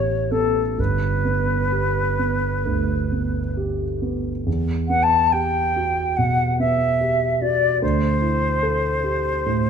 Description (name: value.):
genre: classical, impressionist duo for flute and grand piano.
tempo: 64-74 BPM.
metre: 4/4.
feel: rubato.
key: unclear.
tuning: A4 = 440 Hz.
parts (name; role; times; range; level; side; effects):
concert flute; melody; 0.0-9.7 s; A4 to A5; -21 LUFS; left 2 dB; none.
dark concert grand piano; accompaniment; 0.0-9.7 s; G1 to A4; -22 LUFS; right 2 dB; none.
room: moderate recital hall reverb, RT60 1.5 s.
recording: none.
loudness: -19 LUFS.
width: side -7 dB against mid.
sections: 0.0-4.5 A section; 4.5-9.7 B section.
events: none.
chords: 0.0 A9; 0.8 G; 4.5 Emadd9; 7.8 D11.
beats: | 0.78 1.72 2.65 3.57 | 4.47 5.33 6.18 7.01 | 7.82 8.63 9.46.